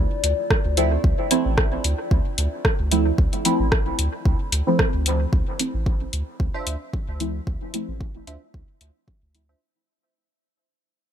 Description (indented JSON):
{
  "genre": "dub techno",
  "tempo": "112 BPM",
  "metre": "4/4",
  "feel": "swing 55% on 16ths",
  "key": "D minor",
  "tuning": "A4 = 436 Hz",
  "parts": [
    { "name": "dark analog pad", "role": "sustained chords", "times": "0.0-5.3 s", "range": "D4 to D5", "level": "-32 LUFS", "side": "left 5 dB", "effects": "chorus, phaser, sidechain pumping" },
    { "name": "soft dub sub bass", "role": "bass", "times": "0.0-9.5 s", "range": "A1 to D2", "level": "-24 LUFS", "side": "equal", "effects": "sidechain pumping" },
    { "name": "deep house drum kit", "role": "drums", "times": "0.2-9.5 s", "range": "hi-hat, rim click", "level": "-25 LUFS", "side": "equal", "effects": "overdrive, dub echo" },
    { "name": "electronic kick drum", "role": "drums", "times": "0.5-9.2 s", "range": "none", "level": "-22 LUFS", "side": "equal", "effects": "overdrive" },
    { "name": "deep mellow chord stab", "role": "stabs", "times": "0.8-9.5 s", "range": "F3 to E4", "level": "-25 LUFS", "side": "right 2 dB", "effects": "chorus, phaser, sidechain pumping, dub echo" },
    { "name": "wavetable chord stab", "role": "riff", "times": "6.5-9.6 s", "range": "D4 to E5", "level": "-37 LUFS", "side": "right 2 dB", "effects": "sidechain pumping, dub echo" }
  ],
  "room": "digital ambience",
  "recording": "none",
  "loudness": "-20 LUFS",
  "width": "side -9 dB against mid",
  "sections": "0.0-5.3 A section; 5.3-9.6 B section",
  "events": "fade-out 5.3-9.6",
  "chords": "0.0 Dm9",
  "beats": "0.51 | 1.04 1.58 2.11 2.65 | 3.18 3.72 4.25 4.79 | 5.33 5.86 6.40 6.93 | 7.47 8.01 8.54 9.08"
}